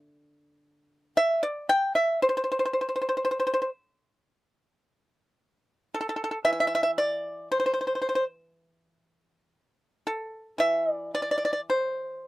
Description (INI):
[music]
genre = chinese traditional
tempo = 57 BPM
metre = 2/4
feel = rubato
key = unclear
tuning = A4 = 440 Hz
[part]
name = pipa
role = solo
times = 0.0-12.3 s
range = D3 to G5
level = -24 LUFS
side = equal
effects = none
[sound]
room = light reverb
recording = dry, close 1970s-style studio recording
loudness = -24 LUFS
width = side -17 dB against mid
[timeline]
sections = 0.0-4.3 A section; 4.3-12.3 B section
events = none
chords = none